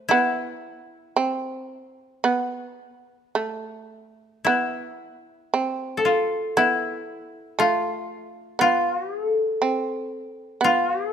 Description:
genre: japanese traditional, Japanese chamber music.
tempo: 53-61 BPM.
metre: 4/4.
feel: rubato.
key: E miyako bushi.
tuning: A4 = 440 Hz.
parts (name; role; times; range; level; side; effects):
koto; melody; 0.0-11.1 s; E4 to C5; -22 LUFS; left 2 dB; none.
shamisen; second line; 0.0-11.1 s; A3 to C4; -24 LUFS; right 4 dB; none.
room: moderate recital hall reverb, RT60 1.7 s.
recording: close, detailed microphones.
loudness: -21 LUFS.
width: side -8 dB against mid.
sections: 0.0-4.4 A section; 4.4-11.1 B section.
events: none.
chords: none.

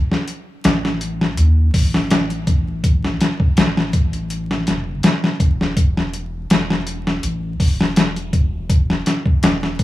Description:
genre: trip hop.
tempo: 82 BPM.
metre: 4/4.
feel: swing 53% on 16ths.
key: unclear.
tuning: A4 = 442 Hz.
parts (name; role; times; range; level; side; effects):
boom bap sampler-style drum kit; drums; 0.1-9.8 s; hi-hat, kick drum, snare drum; -16 LUFS; equal; none.
soft dub sub bass; bass; 0.6-9.8 s; E1 to D#2; -21 LUFS; equal; none.
room: light reverb.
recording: vinyl crackle.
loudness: -16 LUFS.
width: side -16 dB against mid.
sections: 0.0-9.8 A section.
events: none.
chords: none.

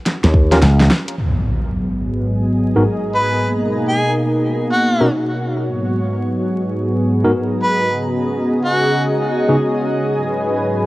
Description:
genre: glitch hop.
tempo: 107 BPM.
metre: 4/4.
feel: swing 63% on 16ths.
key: G# minor.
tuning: A4 = 442 Hz.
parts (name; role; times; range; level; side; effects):
pop drum kit; drums; 0.1-1.3 s; crash cymbal, hi-hat, snare drum; -17 LUFS; equal; low-pass filter on hats, low-pass filter on snare, low-pass filter on cymbals, low-pass filter on room.
slap bass with an envelope filter; bass; 0.2-0.9 s; C#2 to D#2; -12 LUFS; equal; none.
electronic kick drum; drums; 0.3-0.5 s; none; -13 LUFS; equal; none.
tine electric piano; stabs; 0.5-9.6 s; G#2 to A#4; -18 LUFS; equal; medium stereo tremolo, sidechain pumping, cassette tape, tape echo.
warm analog pad; sustained chords; 1.2-10.9 s; G#2 to B4; -18 LUFS; equal; chorus, vintage 12-bit sampler grit, sidechain pumping, cassette tape.
impact; sound effects; 1.2-3.4 s; none; -22 LUFS; equal; none.
granular cloud pad; texture; 1.8-10.9 s; C#4 to A#5; -23 LUFS; equal; built-in reverb, sidechain pumping, cassette tape.
warm harmonica; melody; 3.1-9.0 s; F#4 to B4; -20 LUFS; equal; vintage 12-bit sampler grit, cassette tape, tape echo.
room: moderate lush hall reverb, RT60 2.2 s.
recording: home recording on cassette, vinyl crackle.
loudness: -15 LUFS.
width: side -18 dB against mid.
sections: 0.0-1.2 A section; 1.2-10.9 B section.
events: drum fill 0.1-1.2; impact 1.2-3.4; filter sweep on analog synth pad 1.2-10.9.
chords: 0.1 D#7(no3); 1.2 G#m7; 3.4 Bmaj7; 5.7 G#m7; 7.9 C#7sus4; 10.2 G#m7.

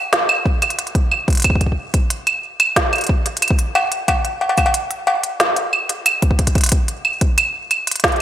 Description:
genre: IDM.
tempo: 91 BPM.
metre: 4/4.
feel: straight.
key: none.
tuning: none.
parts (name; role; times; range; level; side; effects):
organic electronic drum kit; drums; 0.1-8.2 s; cabasa, claves, cowbell, hi-hat, snare drum; -16 LUFS; right 1 dB; overdrive, digital delay.
electronic kick drum; drums; 0.5-8.2 s; none; -17 LUFS; equal; overdrive.
room: light reverb.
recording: none.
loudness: -15 LUFS.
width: side -11 dB against mid.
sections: 0.0-8.2 A section.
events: drum fill 6.4-6.7.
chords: none.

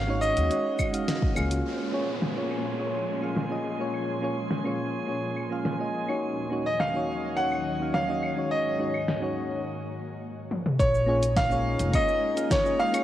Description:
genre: sunset chillout.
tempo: 105 BPM.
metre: 4/4.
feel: straight.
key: Bb minor.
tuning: A4 = 441 Hz.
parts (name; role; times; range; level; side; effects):
bright grand piano; melody; 0.0-1.3, 6.7-13.0 s; Db5 to Gb5; -27 LUFS; equal; cassette tape, tape echo.
ethereal airy pad; sustained chords; 0.0-13.0 s; Eb2 to C6; -34 LUFS; equal; ensemble chorus, built-in reverb, cassette tape.
upright bass; bass; 0.0-1.6, 10.8-11.9 s; F1 to Eb2; -28 LUFS; equal; none.
soft electric-piano-like synth keys; accompaniment; 0.1-13.0 s; Ab3 to F5; -30 LUFS; equal; chorus, auto-pan, cassette tape, analog delay.
deep house drum kit; drums; 0.2-13.0 s; cabasa, claves, hi-hat, snare drum, toms; -32 LUFS; left 1 dB; low-pass filter on hats, cassette tape, low-pass filter on perc, low-pass filter on snare, low-pass filter on toms, low-pass filter on room.
electronic kick drum; drums; 0.8-1.3, 10.8-12.6 s; none; -28 LUFS; equal; cassette tape.
drifting glass-harmonics texture; texture; 2.1-13.0 s; Eb4 to Ab5; -40 LUFS; right 3 dB; chorus, built-in reverb, cassette tape.
downlifter; sound effects; 1.7-6.2 s; none; -38 LUFS; equal; none.
room: moderate lush hall reverb, RT60 2.1 s.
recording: home recording on cassette.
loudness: -25 LUFS.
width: side -12 dB against mid.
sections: 0.0-1.7 A section; 1.7-10.8 B section; 10.8-13.0 C section.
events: band accent 1.1; break 9.7-10.8; drum fill 10.5.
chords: 0.0 Ab7sus4; 1.7 Bbm7; 6.2 Ebm7; 8.5 Ab7sus4; 10.8 Bbm7.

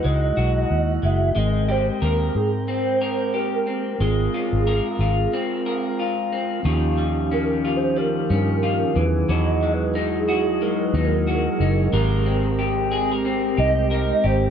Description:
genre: indie pop, bedroom pop.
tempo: 91 BPM.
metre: 4/4.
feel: swing 60% on 16ths.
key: Ab major.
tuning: A4 = 440 Hz.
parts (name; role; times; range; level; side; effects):
hollow clarinet-like synth lead; melody; 0.0-14.5 s; Ab4 to E5; -25 LUFS; right 3 dB; ensemble chorus.
electric guitar through a small old amp; accompaniment; 0.0-14.5 s; Eb3 to Bb4; -25 LUFS; left 5 dB; wide subtle chorus, warbly pitch drift.
mellow tonewheel organ; accompaniment; 0.0-14.5 s; F3 to G5; -26 LUFS; right 5 dB; slow rotary speaker, cassette tape.
vintage muted fingered electric bass; bass; 0.0-14.5 s; F#1 to Ab2; -22 LUFS; equal; none.
warbly tape-like pad; sustained chords; 7.4-14.5 s; Eb3 to D#5; -28 LUFS; left 2 dB; chorus, built-in reverb.
room: light reverb.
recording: none.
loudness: -19 LUFS.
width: side -8 dB against mid.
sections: 0.0-6.7 A section; 6.7-14.5 B section.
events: break 5.3-6.7; soft synth lead solo 6.7-14.5.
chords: 0.0 Emaj9; 1.4 Abmaj9; 4.0 Ab69; 6.7 Eb9; 9.0 Emaj9; 11.9 Abmaj9.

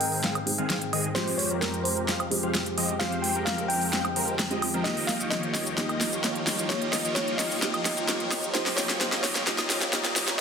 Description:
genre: EDM, festival progressive house.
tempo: 130 BPM.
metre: 4/4.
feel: straight.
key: unclear.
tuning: A4 = 440 Hz.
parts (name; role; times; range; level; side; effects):
bell-like FM electric piano; melody; 0.0-10.4 s; Bb4 to G5; -32 LUFS; left 1 dB; chorus, tremolo, dub echo.
felt-muted upright piano; accompaniment; 0.0-10.4 s; Ab3 to Ab4; -35 LUFS; right 3 dB; dub echo.
lush unison pad; sustained chords; 0.0-10.4 s; Db2 to Ab4; -38 LUFS; left 1 dB; chorus, vintage 12-bit sampler grit.
big supersaw lead; riff; 0.0-10.4 s; Eb3 to F5; -30 LUFS; left 1 dB; phaser, low-pass filter, dub echo.
pop drum kit; drums; 0.0-10.4 s; cabasa, hi-hat, snare drum, woodblock; -27 LUFS; equal; studio reverb.
riser; sound effects; 2.3-10.4 s; none; -41 LUFS; right 1 dB; none.
room: moderate recital hall reverb, RT60 1.6 s, digital ambience.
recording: dense, heavily limited modern master, high-pass filter.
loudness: -24 LUFS.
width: side -6 dB against mid.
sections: 0.0-10.4 A section.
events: build-up 0.0-10.4; drum fill 0.0-10.4; filter sweep on supersaw synth 0.0-10.4; filter sweep on analog synth pad 0.0-10.4.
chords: 0.0 Ab; 1.2 Fmadd9; 4.9 Ebadd9; 8.5 Db.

